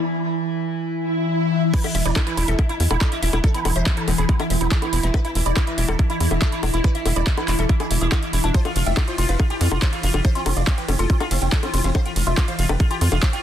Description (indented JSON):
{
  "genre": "psychedelic trance",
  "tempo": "141 BPM",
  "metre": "4/4",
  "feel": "straight",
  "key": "unclear",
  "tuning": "A4 = 442 Hz",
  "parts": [
    { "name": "evolving wavetable pad", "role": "sustained chords", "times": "0.0-13.4 s", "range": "E3 to E4", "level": "-26 LUFS", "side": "left 2 dB", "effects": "phaser, built-in reverb, sidechain pumping" },
    { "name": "woody wave-folded pluck", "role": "riff", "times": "0.0-13.4 s", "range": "D4 to G5", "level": "-29 LUFS", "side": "moving between left 4 dB and right 6 dB", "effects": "chorus, auto-pan, sidechain pumping, digital delay" },
    { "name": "swell", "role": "sound effects", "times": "1.0-1.7 s", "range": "none", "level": "-26 LUFS", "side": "right 3 dB", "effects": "none" },
    { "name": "sitar", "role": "melody", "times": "1.7-13.4 s", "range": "B3 to E5", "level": "-29 LUFS", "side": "equal", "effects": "phaser, sidechain pumping, digital delay" },
    { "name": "big-room dance drum kit", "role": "drums", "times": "1.7-13.4 s", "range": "bongos, crash cymbal, handclaps, hi-hat, ride cymbal", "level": "-26 LUFS", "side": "left 2 dB", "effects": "overdrive, small room ambience" },
    { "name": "electronic kick drum", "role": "drums", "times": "1.7-13.3 s", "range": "none", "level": "-19 LUFS", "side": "equal", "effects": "small room ambience" },
    { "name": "tight sequencer bass", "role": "bass", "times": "1.9-13.2 s", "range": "E1 to F2", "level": "-21 LUFS", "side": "equal", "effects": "none" }
  ],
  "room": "digital ambience",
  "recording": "dense, heavily limited modern master",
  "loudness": "-18 LUFS",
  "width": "side -10 dB against mid",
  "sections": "0.0-1.7 A section; 1.7-13.4 B section",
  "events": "filter sweep on ambient pad 0.0-1.7; break 0.0-1.7; swell 1.0-1.7; drop 1.7-13.4",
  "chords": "0.0 E5; 8.5 F5"
}